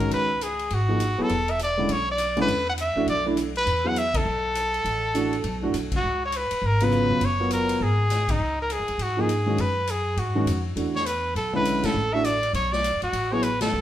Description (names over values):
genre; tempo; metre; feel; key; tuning
modal jazz; 203 BPM; 4/4; swing 62% on 8ths; unclear; A4 = 440 Hz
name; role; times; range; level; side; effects
bright trumpet; melody; 0.0-13.8 s; Eb4 to F#5; -25 LUFS; equal; none
warm concert grand piano; accompaniment; 0.0-13.4 s; Db3 to Bb4; -26 LUFS; right 1 dB; none
upright bass; bass; 0.0-13.8 s; E1 to B2; -28 LUFS; equal; none
swinging big-band drum kit; drums; 0.0-13.7 s; hi-hat, kick drum, ride cymbal, snare drum; -34 LUFS; left 2 dB; none
room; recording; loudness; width
wet studio reverb, RT60 0.9 s; heard from further back in the room, faint mains hum; -22 LUFS; side -12 dB against mid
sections
0.0-13.8 A section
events
band accent 4.1, 5.9, 8.2, 11.8, 13.6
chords
0.0 Db9sus4; 1.3 E7sus4; 6.0 Db7sus4; 10.8 E7sus4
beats
| 0.11 0.41 0.70 1.00 | 1.30 1.59 1.89 2.18 | 2.48 2.77 3.07 3.37 | 3.66 3.96 4.25 4.55 | 4.84 5.14 5.43 5.73 | 6.03 6.32 6.62 6.91 | 7.21 7.51 7.80 8.10 | 8.39 8.69 8.99 9.28 | 9.58 9.87 10.17 10.47 | 10.76 11.06 11.35 11.65 | 11.95 12.24 12.54 12.83 | 13.13 13.43 13.72